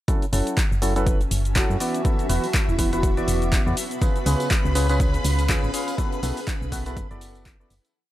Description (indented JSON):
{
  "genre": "piano house",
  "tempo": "122 BPM",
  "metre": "4/4",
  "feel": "swing 57% on 16ths",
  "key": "F# minor",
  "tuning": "A4 = 445 Hz",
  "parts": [
    { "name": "percussive organ stab", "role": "riff", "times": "0.1-7.7 s", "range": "C#3 to E#5", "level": "-28 LUFS", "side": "equal", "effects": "lush chorus, sidechain pumping, tape echo" },
    { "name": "electronic kick drum", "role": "drums", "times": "0.1-7.6 s", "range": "none", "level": "-23 LUFS", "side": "equal", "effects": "overdrive" },
    { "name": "punchy analog drum machine", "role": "drums", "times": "0.1-7.9 s", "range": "handclaps, hi-hat, shaker", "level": "-29 LUFS", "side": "equal", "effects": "overdrive" },
    { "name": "granular cloud pad", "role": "texture", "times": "1.2-8.0 s", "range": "B3 to B5", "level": "-31 LUFS", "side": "equal", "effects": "built-in reverb, sidechain pumping" },
    { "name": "solid FM bass", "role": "bass", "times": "0.3-7.8 s", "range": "E1 to F#2", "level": "-24 LUFS", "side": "equal", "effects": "tube saturation, sidechain pumping" },
    { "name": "breathy flute-like synth lead", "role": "melody", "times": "1.0-3.4 s", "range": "E4 to B4", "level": "-32 LUFS", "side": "right 2 dB", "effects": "lush chorus, tape echo" },
    { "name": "string machine, violins", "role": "sustained chords", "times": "4.0-8.0 s", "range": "B4 to B5", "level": "-35 LUFS", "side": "equal", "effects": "ensemble chorus, sidechain pumping" },
    { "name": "tambourine", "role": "percussion", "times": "4.0-7.9 s", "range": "none", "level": "-39 LUFS", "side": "right 2 dB", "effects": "none" }
  ],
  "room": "little or no reverb",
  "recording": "dry, gritty hardware recording",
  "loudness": "-20 LUFS",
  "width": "side -14 dB against mid",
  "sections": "0.1-8.0 drop",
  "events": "drop 0.1-8.0; fade-out 5.3-8.0",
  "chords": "0.1 F#m7; 1.8 Esus2; 3.8 C#7; 6.0 B7sus4",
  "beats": "| 0.08 0.57 1.06 1.56 | 2.05 2.54 3.03 3.52 | 4.02 4.51 5.00 5.49 | 5.98 6.47 6.97 7.46"
}